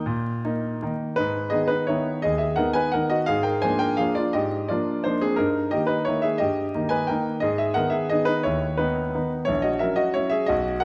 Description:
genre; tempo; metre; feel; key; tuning
classical, piano waltz; 158-186 BPM; 3/4; rubato; G# minor; A4 = 440 Hz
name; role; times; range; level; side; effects
clear grand piano; solo; 0.0-10.8 s; A#1 to G6; -24 LUFS; equal; none
room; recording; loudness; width
moderate scoring stage reverb, RT60 1.5 s; vinyl crackle; -24 LUFS; mono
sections
0.0-1.2 A section; 1.2-10.8 B section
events
none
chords
0.0 D#; 1.2 G#m; 3.3 A#7/G#; 5.4 D#/G; 7.4 G#m; 9.5 F#7/A#

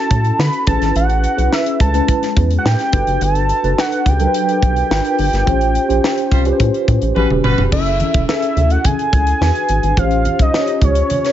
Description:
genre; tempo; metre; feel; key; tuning
polished 1980s jazz-funk pop; 106 BPM; 4/4; straight; unclear; A4 = 444 Hz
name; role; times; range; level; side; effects
fat analog lead; melody; 0.0-11.3 s; C#5 to B5; -19 LUFS; right 2 dB; chorus
mellow tine electric piano; accompaniment; 0.0-11.3 s; F#3 to C#5; -19 LUFS; left 1 dB; medium stereo tremolo, analog chorus
rubbery square bass; bass; 0.1-11.0 s; E1 to D3; -17 LUFS; equal; none
crisp fusion drum kit; drums; 0.1-11.3 s; crash cymbal, hi-hat, kick drum, snare drum, toms; -19 LUFS; equal; none
clear horn section; second line; 6.3-7.6 s; G3 to B#4; -24 LUFS; right 3 dB; digital delay
congas; percussion; 7.7-11.2 s; none; -26 LUFS; right 2 dB; none
room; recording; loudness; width
studio reverb; nothing above 7.6 kHz; -13 LUFS; side -11 dB against mid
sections
0.0-7.7 A section; 7.7-11.3 B section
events
band accent 5.5-7.7; drum fill 7.2-7.7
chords
0.0 Dmaj7; 0.7 Amaj7; 2.9 Gmaj9; 4.9 G#dim7; 5.5 A7alt; 7.2 A13; 7.7 F#m9; 9.4 E7; 10.0 A7alt

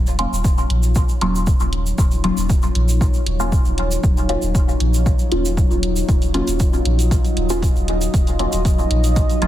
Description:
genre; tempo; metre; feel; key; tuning
dub techno; 117 BPM; 4/4; straight; Eb minor; A4 = 440 Hz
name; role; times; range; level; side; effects
deep dark ambient pad; sustained chords; 0.0-9.5 s; Gb3 to Eb5; -25 LUFS; left 1 dB; chorus, built-in reverb, sidechain pumping
warm sub bass; bass; 0.0-9.5 s; Eb1 to Bb1; -20 LUFS; equal; sidechain pumping
egg shaker; percussion; 0.1-9.4 s; none; -32 LUFS; right 4 dB; none
filtered dub chord stab; stabs; 0.2-9.5 s; Gb3 to F4; -24 LUFS; left 1 dB; phaser, sidechain pumping, dub echo
electronic hi-hat; drums; 0.2-9.5 s; none; -29 LUFS; right 2 dB; none
electronic kick drum; drums; 0.4-9.3 s; none; -18 LUFS; equal; none
room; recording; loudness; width
little or no reverb; dense, heavily limited modern master; -15 LUFS; side -13 dB against mid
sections
0.0-9.5 A section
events
none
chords
0.0 Ebm9

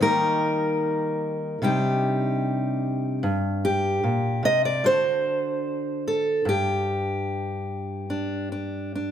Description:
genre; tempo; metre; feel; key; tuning
folk, solo fingerstyle acoustic guitar; 74 BPM; 4/4; rubato; G minor; A4 = 440 Hz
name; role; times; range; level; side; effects
fingerpicked steel-string acoustic guitar; solo; 0.0-9.1 s; G2 to Eb5; -22 LUFS; equal; none
room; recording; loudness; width
light reverb; none; -22 LUFS; side -9 dB against mid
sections
0.0-9.1 A section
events
none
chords
0.0 Eb; 1.6 Cmadd9; 3.2 Gm; 4.8 D7; 6.5 G5

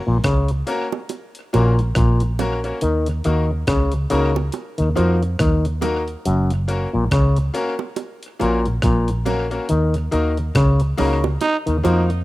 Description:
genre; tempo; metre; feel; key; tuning
roots reggae; 70 BPM; 4/4; swing 58% on 16ths; F# major; A4 = 440 Hz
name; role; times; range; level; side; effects
overdriven clav; riff; 0.1-12.1 s; F#2 to E#3; -21 LUFS; left 2 dB; auto-wah
vintage muted fingered electric bass; bass; 0.1-12.2 s; F#1 to E#2; -20 LUFS; equal; none
breakbeat sampler-style drum kit; drums; 0.2-12.2 s; hi-hat, kick drum, rim click; -24 LUFS; equal; tape echo
bright concert grand piano; stabs; 0.7-12.0 s; A#3 to A#4; -26 LUFS; left 2 dB; none
bongos; percussion; 0.9-12.1 s; none; -27 LUFS; right 9 dB; none
growling trombone; second line; 11.4-12.1 s; D#4; -22 LUFS; right 3 dB; tape echo
room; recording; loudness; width
little or no reverb; rough home demo mix; -17 LUFS; side -17 dB against mid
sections
0.0-12.2 A section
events
band accent 9.7-12.2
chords
0.0 F#; 2.8 D#m; 6.3 F#; 9.7 D#m

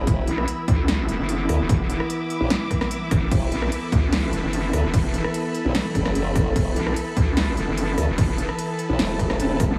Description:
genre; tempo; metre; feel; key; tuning
heavy wobble dubstep; 148 BPM; 4/4; half-time; unclear; A4 = 440 Hz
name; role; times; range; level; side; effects
evolving wavetable pad; sustained chords; 0.0-9.8 s; E3 to A4; -32 LUFS; equal; chorus, built-in reverb, sidechain pumping
formant-sweep wobble bass; bass; 0.0-9.7 s; E1 to D2; -26 LUFS; equal; chorus, overdrive
rich studio string section; texture; 0.0-9.8 s; E4 to D6; -34 LUFS; equal; sidechain pumping
big-room dance drum kit; drums; 0.1-9.8 s; crash cymbal, hi-hat, rim click, snare drum, toms; -30 LUFS; equal; overdrive
electronic kick drum; drums; 0.1-9.7 s; none; -25 LUFS; equal; overdrive
vowel-sweep wobble bass; bass; 0.3-9.8 s; E1 to D2; -26 LUFS; equal; chorus, overdrive
room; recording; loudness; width
light reverb, digital ambience; small room ambience; -23 LUFS; mono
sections
0.0-9.8 A section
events
drum fill 9.2-9.8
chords
0.0 E5

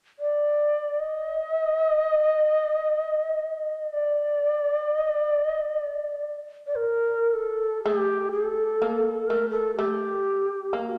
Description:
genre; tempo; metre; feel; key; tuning
japanese traditional, Japanese chamber music; free time; none; none; D miyako bushi; A4 = 438 Hz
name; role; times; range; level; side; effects
long shakuhachi; melody; 0.2-11.0 s; G4 to Eb5; -26 LUFS; equal; none
shamisen; second line; 7.9-11.0 s; A3 to Bb3; -34 LUFS; equal; none
room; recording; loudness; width
wet recital hall reverb, RT60 1.8 s; none; -25 LUFS; mono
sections
0.0-7.8 A section; 7.8-11.0 B section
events
none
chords
none

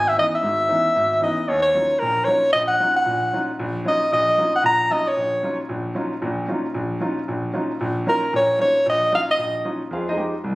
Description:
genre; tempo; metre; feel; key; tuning
jazz; 228 BPM; 4/4; swing 61% on 8ths; Eb minor; A4 = 440 Hz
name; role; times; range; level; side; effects
warm soprano saxophone; melody; 0.0-5.6, 8.1-9.6 s; Bb4 to Bb5; -18 LUFS; equal; none
warm concert grand piano; accompaniment; 0.0-10.6 s; Ab1 to F5; -25 LUFS; equal; none
room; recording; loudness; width
light reverb; recorded on a phone in the room, studio reverb; -18 LUFS; side -19 dB against mid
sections
0.0-1.5 A section; 1.5-9.9 B section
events
none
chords
0.0 Dbm9; 1.5 Ebm9; 9.9 Fm9

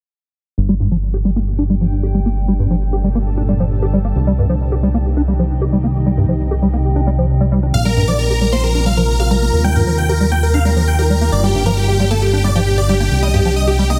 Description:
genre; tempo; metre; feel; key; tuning
trance; 134 BPM; 4/4; straight; G minor; A4 = 439 Hz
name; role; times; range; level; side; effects
shimmering ambient pad; sustained chords; 1.2-14.0 s; Bb2 to Bb4; -26 LUFS; equal; chorus, built-in reverb
fat analog bass; bass; 0.6-14.0 s; G1 to Eb2; -18 LUFS; equal; none
liquid acid bass; arpeggios; 0.7-13.9 s; G2 to G4; -21 LUFS; equal; analog chorus, tape echo
big supersaw lead; melody; 7.7-14.0 s; G4 to G5; -20 LUFS; equal; tape echo
room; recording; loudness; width
light reverb, digital ambience; dense, heavily limited modern master; -16 LUFS; mono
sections
0.6-14.0 A section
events
filter sweep on acid bass 0.6-14.0; filter sweep on ambient pad 0.6-14.0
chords
0.6 Gm; 4.2 Cm; 7.7 Bbsus2; 9.5 Ebadd9; 11.3 Gm; 13.1 Cm

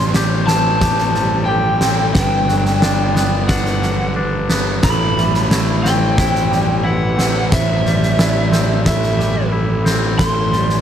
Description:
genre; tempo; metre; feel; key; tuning
post-rock; 90 BPM; 4/4; straight; A dorian; A4 = 441 Hz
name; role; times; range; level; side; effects
lead guitar through a small cranked amp; melody; 0.0-10.8 s; E5 to C6; -20 LUFS; equal; overdrive, tape echo
twangy electric guitar; arpeggios; 0.0-10.8 s; G2 to G4; -25 LUFS; left 3 dB; tape echo
vibraphone with soft mallets; arpeggios; 0.0-10.8 s; A4 to E5; -28 LUFS; right 4 dB; tape echo
fuzz picked electric bass; bass; 0.0-10.8 s; G1 to A1; -18 LUFS; equal; overdrive
huge arena drum kit; drums; 0.1-10.8 s; kick drum, snare drum; -18 LUFS; equal; none
room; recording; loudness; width
light reverb, small room reverb; none; -13 LUFS; side -9 dB against mid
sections
0.0-10.8 A section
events
none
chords
0.0 D7sus4/A; 2.2 Gmaj7; 4.8 Am11; 10.2 D7sus4/A

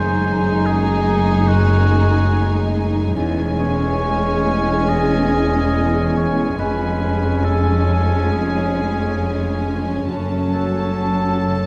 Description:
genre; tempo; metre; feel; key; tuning
classical, slow romantic movement for symphony orchestra; 60-74 BPM; 4/4; rubato; C# minor; A4 = 440 Hz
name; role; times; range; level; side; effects
dark studio violin section; melody; 0.0-11.7 s; G#5 to A5; -35 LUFS; equal; none
clear clarinet; second line; 0.0-11.6 s; C#4 to D#4; -31 LUFS; equal; none
mellow baroque flute; second line; 0.0-11.7 s; G#5 to A5; -30 LUFS; equal; none
rich studio violin section; second line; 0.0-11.7 s; C#4 to D#4; -32 LUFS; equal; none
warm oboe; second line; 0.0-11.7 s; F#4 to D#5; -29 LUFS; equal; none
mellow bassoon; accompaniment; 0.0-11.7 s; F#3 to G#3; -30 LUFS; equal; none
rich studio viola section; accompaniment; 0.0-11.7 s; F#3 to G#3; -30 LUFS; equal; none
mellow French horn section; sustained chords; 0.0-11.7 s; G#3 to D#4; -30 LUFS; equal; none
concert harp; arpeggios; 0.0-11.7 s; E2 to G#4; -30 LUFS; equal; none
rich studio cello section; bass; 0.0-11.7 s; E2 to F#2; -25 LUFS; equal; none
warm studio double bass section; bass; 0.0-11.7 s; E1 to F#1; -24 LUFS; equal; none
room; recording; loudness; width
wet recital hall reverb, RT60 1.8 s; none; -18 LUFS; mono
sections
0.0-11.7 A section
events
none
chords
0.0 G#7/F#; 3.2 C#m/E; 6.6 C#7/E#; 10.1 F#m

